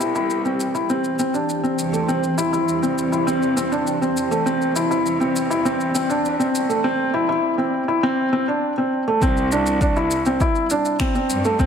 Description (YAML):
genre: piano and strings electronica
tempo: 101 BPM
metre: 4/4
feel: straight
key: C major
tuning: A4 = 442 Hz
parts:
  - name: granular cloud pad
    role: sustained chords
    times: 0.0-11.7 s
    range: E3 to D5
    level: -27 LUFS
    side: left 1 dB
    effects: built-in reverb, sidechain pumping
  - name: felt-muted upright piano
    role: riff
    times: 0.0-11.7 s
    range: A3 to E4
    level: -19 LUFS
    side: equal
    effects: digital delay
  - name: bright studio cello section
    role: bass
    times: 0.0-11.7 s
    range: C2 to G2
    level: -30 LUFS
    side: equal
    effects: sidechain pumping, high-pass filter
  - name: electronic shaker and finger snaps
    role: drums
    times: 0.0-11.7 s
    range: none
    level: -31 LUFS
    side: left 2 dB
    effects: high-pass filter on snare, high-pass filter on perc
  - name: electronic kick drum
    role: drums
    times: 9.2-11.7 s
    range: none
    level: -21 LUFS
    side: equal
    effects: none
room: wet echo chamber reverb, RT60 2.5 s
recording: none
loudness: -18 LUFS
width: side -7 dB against mid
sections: 0.0-9.2 A section; 9.2-11.7 B section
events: build-up 0.0-9.2; filter sweep on ambient pad 0.0-9.2; drop 9.2-11.7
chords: 0.0 C